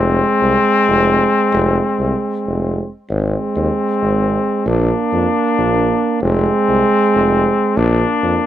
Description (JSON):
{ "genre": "balkan folk, Balkan brass band", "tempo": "268 BPM (eighths)", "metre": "7/8", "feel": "straight", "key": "unclear", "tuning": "A4 = 440 Hz", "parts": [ { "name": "bright trombone", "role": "accompaniment", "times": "0.0-8.5 s", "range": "C4 to D4", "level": "-18 LUFS", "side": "left 6 dB", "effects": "none" }, { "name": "warm euphonium", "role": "accompaniment", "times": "0.0-8.5 s", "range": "Ab3 to Bb3", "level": "-17 LUFS", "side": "right 4 dB", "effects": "none" }, { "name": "warm tuba", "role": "bass", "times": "0.0-8.4 s", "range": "F1 to F2", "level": "-18 LUFS", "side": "equal", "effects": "none" } ], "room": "light reverb", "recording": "close, detailed microphones", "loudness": "-13 LUFS", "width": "side -11 dB against mid", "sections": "0.0-8.5 A section", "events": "none", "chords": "0.0 Fm; 3.1 Ab; 4.7 Bb; 6.2 Fm; 7.8 Bb", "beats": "0.17 0.40 0.62 0.85 1.07 1.30 | 1.53 1.75 1.98 2.20 2.43 2.65 2.88 | 3.10 3.32 3.55 3.77 4.00 4.22 4.44 | 4.67 4.89 5.11 5.33 5.56 5.78 6.00 | 6.22 6.45 6.67 6.89 7.11 7.33 7.55 | 7.78 8.00 8.22 8.44" }